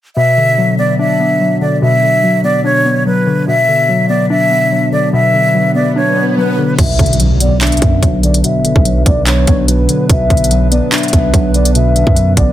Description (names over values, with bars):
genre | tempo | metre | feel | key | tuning
hip hop, trap | 145 BPM | 4/4 | half-time | B minor | A4 = 441 Hz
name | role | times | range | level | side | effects
breathy concert flute | melody | 0.2-12.5 s | B4 to E5 | -14 LUFS | equal | low-pass filter, tape echo
warbly lo-fi synth keys | accompaniment | 0.2-12.5 s | B2 to D4 | -14 LUFS | left 1 dB | chorus, low-pass filter
swell and impact | sound effects | 4.8-8.4 s | none | -22 LUFS | right 1 dB | none
dark analog pad | sustained chords | 7.7-12.5 s | F#3 to B4 | -22 LUFS | right 2 dB | chorus
hard-hitting 808-style bass | bass | 6.8-12.5 s | A1 to F#2 | -13 LUFS | right 1 dB | none
trap drum kit | drums | 6.8-12.5 s | crash cymbal, handclaps, hi-hat, kick drum | -13 LUFS | equal | none
room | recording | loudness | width
digital ambience | dense, heavily limited modern master | -9 LUFS | side -12 dB against mid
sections
0.2-6.8 A section; 6.8-12.5 B section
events
swell 4.8-6.8; impact 6.8-8.4; filter sweep 6.8-12.5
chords
0.2 Bm